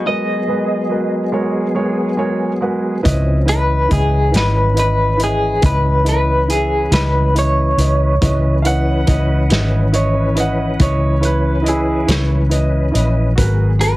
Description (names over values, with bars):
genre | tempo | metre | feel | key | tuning
slow blues | 46 BPM (dotted quarters) | 12/8 | straight | unclear | A4 = 438 Hz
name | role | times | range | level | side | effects
electric guitar through a small old amp | melody | 0.0-14.0 s | G#4 to D#5 | -18 LUFS | equal | tremolo
tonewheel organ | sustained chords | 0.0-14.0 s | E3 to B4 | -22 LUFS | left 1 dB | chorus vibrato, slow rotary speaker
warm grand piano | accompaniment | 0.1-14.0 s | G#3 to A#5 | -22 LUFS | right 2 dB | none
vintage muted fingered electric bass | bass | 3.0-14.0 s | G#1 to C#2 | -16 LUFS | equal | none
vintage drum kit | drums | 3.1-14.0 s | hi-hat, kick drum, snare drum | -20 LUFS | equal | none
warm upright piano | second line | 8.6-12.1 s | E4 to F#5 | -21 LUFS | right 2 dB | none
room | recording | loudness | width
light reverb | heavily compressed radio sound | -13 LUFS | side -18 dB against mid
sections
0.0-14.0 A section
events
grand piano fill 1.8-3.1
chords
0.0 G#m7; 3.1 C#m7; 13.4 G#m7